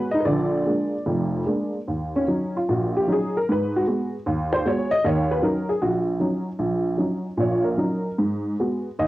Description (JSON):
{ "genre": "solo jazz", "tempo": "151 BPM", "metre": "4/4", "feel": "swing 65% on 8ths, rubato", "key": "Eb minor", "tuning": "A4 = 440 Hz", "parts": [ { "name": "honky-tonk upright piano", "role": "solo", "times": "0.0-9.1 s", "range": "F1 to Eb5", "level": "-21 LUFS", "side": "equal", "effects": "cassette tape" } ], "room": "moderate small room reverb, RT60 0.6 s", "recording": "home recording on cassette", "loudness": "-21 LUFS", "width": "side -16 dB against mid", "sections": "0.0-1.9 A section; 1.9-9.1 B section", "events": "honky-tonk piano solo 1.9-9.1", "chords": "0.3 Bb7; 1.9 Ebm7; 3.5 Abm7; 5.0 Ebm7; 8.2 Abm7" }